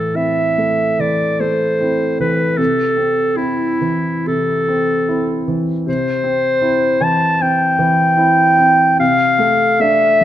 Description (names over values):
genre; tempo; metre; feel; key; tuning
classical, romantic duo for clarinet and grand piano; 62-79 BPM; 4/4; rubato; A minor; A4 = 440 Hz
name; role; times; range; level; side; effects
warm clarinet; melody; 0.0-10.2 s; E4 to A5; -14 LUFS; equal; none
warm concert grand piano; accompaniment; 0.0-10.2 s; A2 to E4; -18 LUFS; equal; none
room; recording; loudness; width
moderate scoring stage reverb, RT60 1.7 s; none; -13 LUFS; side -12 dB against mid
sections
0.0-10.2 A section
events
none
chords
0.0 Am; 2.6 Am/C; 9.0 Dm7/C